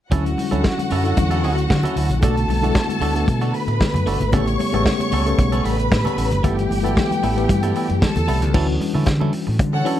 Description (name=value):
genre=disco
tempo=114 BPM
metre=4/4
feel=straight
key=D major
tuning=A4 = 440 Hz
part: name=warm studio violin section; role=second line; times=0.1-9.8 s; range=C#4 to C#6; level=-25 LUFS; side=equal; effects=none
part: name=clean electric guitar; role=accompaniment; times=0.1-10.0 s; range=F#3 to A4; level=-28 LUFS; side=right 5 dB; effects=none
part: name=tine electric piano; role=accompaniment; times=0.1-10.0 s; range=C#3 to A4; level=-23 LUFS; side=left 2 dB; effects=overdrive, fast stereo tremolo
part: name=overdriven fingered electric bass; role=bass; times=0.1-9.8 s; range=F#1 to D3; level=-21 LUFS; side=equal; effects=none
part: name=warm soul drum kit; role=drums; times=0.1-10.0 s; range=crash cymbal, hi-hat, kick drum, snare drum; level=-22 LUFS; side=equal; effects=none
part: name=congas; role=percussion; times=0.1-9.7 s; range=none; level=-28 LUFS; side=left 4 dB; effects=none
room=light reverb, studio ambience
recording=dark, warm production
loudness=-17 LUFS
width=side -12 dB against mid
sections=0.1-8.5 A section; 8.5-10.0 B section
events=none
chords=0.1 Dmaj9; 2.2 Bm7; 4.3 A9; 6.4 G69; 8.5 Dmaj9